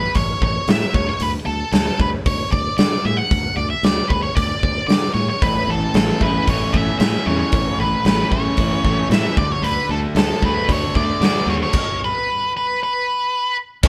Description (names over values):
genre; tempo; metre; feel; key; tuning
classic rock; 114 BPM; 4/4; straight; unclear; A4 = 441 Hz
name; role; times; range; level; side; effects
octave-fuzz lead guitar; melody; 0.0-13.6 s; A4 to F#5; -24 LUFS; equal; distortion
modern bright fingered electric bass; bass; 0.0-13.9 s; A1 to D3; -27 LUFS; equal; none
big rock drum kit; drums; 0.1-13.9 s; crash cymbal, hi-hat, kick drum, snare drum; -22 LUFS; equal; none
string machine, cellos; sustained chords; 5.4-13.9 s; C#4 to F#5; -37 LUFS; equal; none
overdriven semi-hollow guitar; riff; 5.4-13.9 s; A2 to F#4; -28 LUFS; equal; none
overdriven semi-hollow guitar; riff; 5.4-13.9 s; A2 to F#4; -28 LUFS; equal; none
room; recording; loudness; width
light reverb; band playing live in one room; -19 LUFS; mono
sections
0.0-13.8 A section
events
stop 11.7-13.8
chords
0.0 A5; 0.9 D5; 5.4 A; 9.4 D; 11.7 N.C.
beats
0.16 0.68 | 1.21 1.74 2.26 2.79 | 3.31 3.84 4.37 4.89 | 5.42 5.95 6.47 7.00 | 7.53 8.05 8.58 9.11 | 9.63 10.16 10.69 11.21 | 11.74 12.27 12.79 13.32 | 13.85